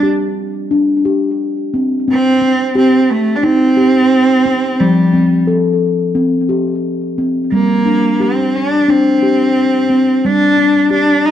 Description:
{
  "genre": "world meditative",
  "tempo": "88 BPM",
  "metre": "4/4",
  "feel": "straight",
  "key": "unclear",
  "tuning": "A4 = 438 Hz",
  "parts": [
    { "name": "rich cello", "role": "melody", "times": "0.0-11.3 s", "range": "G3 to Eb4", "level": "-12 LUFS", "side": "equal", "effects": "none" },
    { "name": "steel tongue drum", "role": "arpeggios", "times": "0.0-11.3 s", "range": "F3 to A4", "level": "-14 LUFS", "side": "left 1 dB", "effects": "ping-pong delay" }
  ],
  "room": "wet echo chamber reverb, RT60 1.5 s, small room reverb",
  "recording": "dark, warm production",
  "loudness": "-11 LUFS",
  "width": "side -10 dB against mid",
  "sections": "0.0-11.3 A section",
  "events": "none",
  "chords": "0.0 G5; 2.1 Cm; 4.8 F; 7.5 G5",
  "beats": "0.04 0.72 1.40 | 2.08 2.75 3.44 4.12 | 4.79 5.47 6.16 6.84 | 7.52 8.20 8.88 9.55 | 10.23 10.91"
}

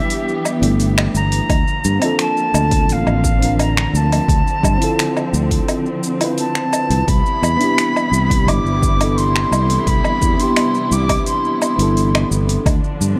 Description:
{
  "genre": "sunset chillout",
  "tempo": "86 BPM",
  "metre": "4/4",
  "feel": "straight",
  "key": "C major",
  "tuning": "A4 = 440 Hz",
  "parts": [
    { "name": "bright reedy concert flute", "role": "melody", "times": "0.0-12.3 s", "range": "E5 to D6", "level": "-24 LUFS", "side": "equal", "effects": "delay" },
    { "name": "mellow FM electric piano", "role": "accompaniment", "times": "0.0-13.2 s", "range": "A3 to B4", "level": "-24 LUFS", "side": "equal", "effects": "chorus" },
    { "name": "dark studio string section", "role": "sustained chords", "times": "0.0-13.2 s", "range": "C3 to G4", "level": "-26 LUFS", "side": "equal", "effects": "none" },
    { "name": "deep house drum kit", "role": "drums", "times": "0.1-13.2 s", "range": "finger snaps, hi-hat, shaker, woodblock", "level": "-24 LUFS", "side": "equal", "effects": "overdrive" },
    { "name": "fretless electric bass", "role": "bass", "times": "0.6-13.1 s", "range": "G1 to G2", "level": "-20 LUFS", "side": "equal", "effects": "none" },
    { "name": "electronic kick drum", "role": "drums", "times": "1.5-12.8 s", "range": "none", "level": "-21 LUFS", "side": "equal", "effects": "none" }
  ],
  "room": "light reverb, digital ambience",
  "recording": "none",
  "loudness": "-16 LUFS",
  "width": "mono",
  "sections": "0.0-13.2 A section",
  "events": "none",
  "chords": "0.0 Cmaj7 (rootless); 1.5 Bbmaj7/D; 4.3 Dm7; 7.1 Cmaj7; 12.7 Bb/D (rootless)",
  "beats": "0.10 0.80 | 1.49 2.19 2.89 3.59 | 4.29 4.98 5.68 6.38 | 7.08 7.77 8.47 9.17 | 9.87 10.56 11.26 11.96 | 12.66"
}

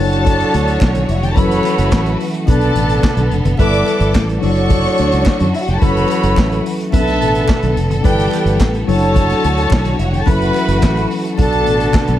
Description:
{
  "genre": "disco",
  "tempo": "108 BPM",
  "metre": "4/4",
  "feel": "straight",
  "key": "D major",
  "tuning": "A4 = 439 Hz",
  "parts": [
    { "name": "dark studio string section", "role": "second line", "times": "0.0-12.2 s", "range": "C#4 to D6", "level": "-20 LUFS", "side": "left 2 dB", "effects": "none" },
    { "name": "mellow tine electric piano", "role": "accompaniment", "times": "0.0-12.2 s", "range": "B2 to C#5", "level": "-20 LUFS", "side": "left 2 dB", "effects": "medium stereo tremolo" },
    { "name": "clear studio string section", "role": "sustained chords", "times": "0.0-12.2 s", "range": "D3 to C#5", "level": "-23 LUFS", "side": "right 1 dB", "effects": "none" },
    { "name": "clear horn section", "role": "stabs", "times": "0.0-12.2 s", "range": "D4 to E5", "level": "-22 LUFS", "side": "right 2 dB", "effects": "none" },
    { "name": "fingered electric bass", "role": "bass", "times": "0.0-12.2 s", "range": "F1 to F#2", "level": "-17 LUFS", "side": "equal", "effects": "none" },
    { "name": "vintage drum kit", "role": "drums", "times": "0.1-12.2 s", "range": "handclaps, hi-hat, kick drum, snare drum", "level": "-18 LUFS", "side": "equal", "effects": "none" },
    { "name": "congas", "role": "percussion", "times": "0.2-12.2 s", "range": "none", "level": "-26 LUFS", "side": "left 5 dB", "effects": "none" },
    { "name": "group handclap", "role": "percussion", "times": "0.8-12.1 s", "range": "none", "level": "-35 LUFS", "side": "right 3 dB", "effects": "none" }
  ],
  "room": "studio reverb",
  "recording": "none",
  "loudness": "-12 LUFS",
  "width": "side -12 dB against mid",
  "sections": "0.0-12.2 A section",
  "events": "none",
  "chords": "0.0 Dmaj7/F#; 1.4 F#m7; 2.5 Bm7; 3.6 G69; 4.4 Dmaj7/F#; 5.8 F#m7; 6.9 Bm7; 8.0 G69; 8.9 Dmaj7/F#; 10.3 F#m7; 11.4 Bm7",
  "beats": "0.26 0.81 | 1.37 1.92 2.48 3.04 | 3.59 4.15 4.70 5.26 | 5.82 6.37 6.93 7.49 | 8.04 8.60 9.15 9.71 | 10.27 10.82 11.38 11.94"
}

